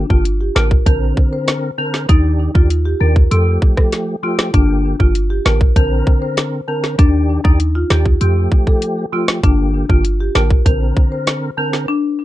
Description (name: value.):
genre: dancehall.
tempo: 98 BPM.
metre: 4/4.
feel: straight.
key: unclear.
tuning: A4 = 440 Hz.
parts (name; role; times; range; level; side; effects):
percussive tonewheel organ; accompaniment; 0.0-11.9 s; D3 to Bb4; -21 LUFS; equal; chorus vibrato, slow rotary speaker.
clean 808-style bass; bass; 0.0-10.9 s; G1 to F2; -15 LUFS; equal; none.
marimba with medium mallets; melody; 0.1-12.0 s; D4 to C5; -21 LUFS; left 1 dB; tape echo.
island pop drum kit; drums; 0.1-11.9 s; hi-hat, kick drum, rim click, snare drum; -13 LUFS; equal; vintage 12-bit sampler grit.
room: little or no reverb.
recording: dark, warm production.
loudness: -13 LUFS.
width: side -15 dB against mid.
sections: 0.0-12.2 A section.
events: drums muted 11.9-12.2.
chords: 0.0 Gm; 0.9 Bbadd9; 2.1 Ebmaj7; 3.3 Fadd9; 4.5 Gm; 5.8 Bbadd9; 7.0 Ebmaj7; 8.2 Fadd9; 9.4 Gm; 10.7 Bbadd9.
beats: 0.25 0.87 1.48 | 2.09 2.70 3.31 3.93 | 4.54 5.15 5.76 6.38 | 6.99 7.60 8.21 8.82 | 9.44 10.05 10.66 11.27 | 11.89.